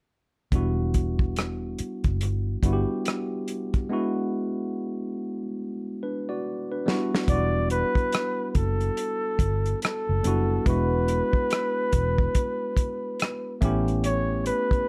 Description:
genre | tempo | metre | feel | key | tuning
R&B, neo-soul | 71 BPM | 4/4 | swing 62% on 16ths | E minor | A4 = 440 Hz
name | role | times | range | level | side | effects
tine electric piano | accompaniment | 0.5-14.9 s | F#3 to D5 | -32 LUFS | equal | none
vintage muted fingered electric bass | bass | 0.5-14.7 s | E1 to A1 | -29 LUFS | equal | none
warm soul drum kit | drums | 0.5-14.9 s | hi-hat, kick drum, rim click, snare drum | -28 LUFS | equal | none
breathy flugelhorn | melody | 7.3-14.9 s | A4 to D5 | -30 LUFS | equal | plate reverb
room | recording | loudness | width
light reverb | none | -26 LUFS | mono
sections
0.5-7.3 A section; 7.3-14.9 B section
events
break 3.9-7.3; drum fill 5.6-7.3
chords
0.5 Em9; 3.9 E7; 6.9 Em9; 10.7 E7; 13.6 A7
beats
| 0.52 1.37 2.21 3.06 | 3.90 4.75 5.59 6.44 | 7.28 8.13 8.97 9.82 | 10.66 11.51 12.35 13.20 | 14.04

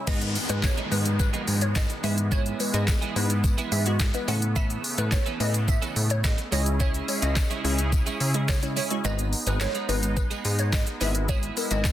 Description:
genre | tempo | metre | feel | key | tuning
dance-pop | 107 BPM | 4/4 | straight | G# minor | A4 = 436 Hz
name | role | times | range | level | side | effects
filtered supersaw swell | sustained chords | 0.0-11.9 s | C#3 to G#4 | -34 LUFS | equal | sidechain pumping
glassy wavetable pluck | melody | 0.1-11.9 s | B4 to F#5 | -34 LUFS | equal | chorus, digital delay
glassy wavetable pluck | accompaniment | 0.1-11.9 s | G#3 to C#5 | -32 LUFS | left 1 dB | chorus, sidechain pumping
twelve-string electric guitar | riff | 0.1-11.9 s | E3 to A4 | -35 LUFS | right 7 dB | ensemble chorus
plucky analog bass | bass | 0.1-11.9 s | G#1 to C#3 | -26 LUFS | equal | sidechain pumping
smooth R&B drum kit | drums | 0.1-11.9 s | crash cymbal, handclaps, hi-hat, kick drum, shaker, snare drum | -26 LUFS | equal | none
tambourine | percussion | 0.1-11.9 s | none | -42 LUFS | left 9 dB | none
downlifter | sound effects | 0.1-4.6 s | none | -37 LUFS | left 1 dB | none
room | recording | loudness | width
digital ambience | dense, heavily limited modern master | -23 LUFS | side -12 dB against mid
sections
0.1-11.9 A section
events
drop 0.1-11.9; kick muted 9.0-10.2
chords
0.1 G#m; 2.0 E/G#; 4.3 Aadd9; 6.5 C#m; 9.0 G#m; 11.0 E/G#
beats
| 0.07 0.64 1.20 1.76 | 2.32 2.88 3.44 4.00 | 4.56 5.12 5.68 6.24 | 6.80 7.36 7.92 8.49 | 9.05 9.61 10.17 10.73 | 11.29 11.85

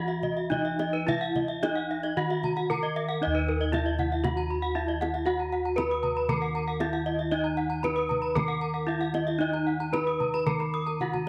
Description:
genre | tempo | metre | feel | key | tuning
Balinese gamelan | 115 BPM | 4/4 | straight | Eb pelog | A4 = 441 Hz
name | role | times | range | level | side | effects
gamelan-type bronze metallophone | melody | 0.0-11.3 s | Eb4 to Cb5-20c | -32 LUFS | equal | slapback echo
gamelan-type bronze metallophone | arpeggios | 0.0-11.1 s | Bb4-30c to Eb6 | -36 LUFS | equal | none
gamelan-type bossed gongs | bass | 0.0-11.3 s | Eb2 to Gb4-30c | -34 LUFS | equal | none
gamelan-type bronze metallophone | arpeggios | 0.1-11.3 s | Cb5-20c to Eb6 | -39 LUFS | equal | none
kendang | percussion | 0.1-11.3 s | none | -38 LUFS | equal | none
room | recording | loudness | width
light reverb | none | -28 LUFS | mono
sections
0.0-3.2 A section; 3.2-11.3 B section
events
drum fill 11.0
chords
none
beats
0.52 | 1.08 1.63 2.17 2.70 | 3.21 3.73 4.24 4.75 | 5.27 5.78 6.30 6.81 | 7.32 7.84 8.36 8.88 | 9.40 9.93 10.46 11.00

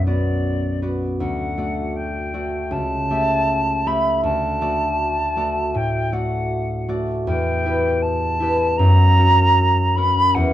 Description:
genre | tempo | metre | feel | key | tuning
classical, romantic duo for flute and harp | 79 BPM | 4/4 | rubato | unclear | A4 = 440 Hz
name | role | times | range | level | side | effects
silver concert flute | melody | 0.0-10.5 s | D5 to B5 | -21 LUFS | equal | none
concert harp | accompaniment | 0.0-10.5 s | B1 to E5 | -19 LUFS | equal | none
room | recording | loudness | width
light reverb | dark, warm production | -17 LUFS | side -13 dB against mid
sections
0.0-10.5 A section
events
none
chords
0.0 Bm; 1.2 D; 2.7 A7/C#; 4.2 D; 7.3 Em; 8.8 F#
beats
0.43 | 1.19 1.95 2.72 3.48 | 4.23 4.99 5.75 6.50 | 7.27 8.03 8.79 9.57 | 10.35

